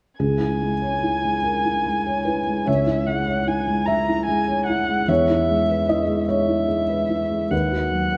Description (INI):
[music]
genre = neoclassical piano and strings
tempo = 49 BPM (dotted quarters)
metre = 6/8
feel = rubato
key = C# dorian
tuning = A4 = 440 Hz
[part]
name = muted violin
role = melody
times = 0.2-8.2 s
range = E5 to A#5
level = -26 LUFS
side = equal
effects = none
[part]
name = felt-muted upright piano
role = accompaniment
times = 0.2-8.2 s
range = C#2 to E5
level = -23 LUFS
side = equal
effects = none
[sound]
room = wet concert hall reverb, RT60 2.1 s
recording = none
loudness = -21 LUFS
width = mono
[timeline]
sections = 0.2-8.2 A section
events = none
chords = 0.2 C#m; 5.1 E; 7.5 B/D#